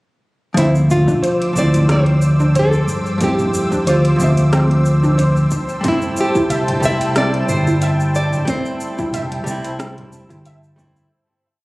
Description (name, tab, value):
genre	sunset chillout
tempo	91 BPM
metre	4/4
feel	swing 54% on 16ths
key	D minor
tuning	A4 = 441 Hz
part	hollow-body jazz guitar	accompaniment	0.5-11.1 s	F3 to E5	-22 LUFS	equal	auto-pan
part	nylon-string guitar	melody	0.6-10.4 s	E4 to E5	-21 LUFS	equal	tape echo
part	lush unison pad	sustained chords	0.8-11.1 s	C5 to E6	-26 LUFS	equal	chorus, phaser
part	soft round pluck	arpeggios	0.6-10.6 s	C4 to E5	-23 LUFS	right 1 dB	ensemble chorus, ping-pong delay
part	mellow fretless electric bass	bass	0.6-11.1 s	G1 to G2	-16 LUFS	equal	none
part	deep house drum kit	drums	0.6-11.1 s	hi-hat, rim click, shaker, toms	-26 LUFS	equal	overdrive
part	electronic kick drum	drums	0.6-10.9 s	none	-24 LUFS	equal	none
room	light reverb, digital ambience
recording	recorded on a phone in the room, club reverb, compression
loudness	-14 LUFS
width	side -21 dB against mid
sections	0.6-11.1 groove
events	fade-out 7.6-11.1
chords	0.6 Dm9; 5.5 Am7